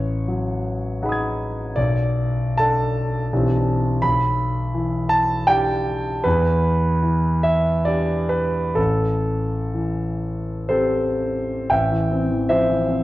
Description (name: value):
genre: classical, impressionist solo piano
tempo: 54-85 BPM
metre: 3/4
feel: rubato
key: A minor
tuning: A4 = 440 Hz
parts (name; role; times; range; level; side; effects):
- clear concert grand piano; solo; 0.0-13.0 s; A1 to G#6; -18 LUFS; equal; none
room: moderate scoring stage reverb, RT60 1.8 s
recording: worn, warbling old tape, cassette tape, warbly pitch drift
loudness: -18 LUFS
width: side -16 dB against mid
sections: 0.0-11.7 A section; 11.7-13.0 B section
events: none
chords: 0.0 G#m7/A; 1.8 Bm7; 3.3 Am11/B; 4.0 G6/B; 6.3 Em7; 8.8 Am7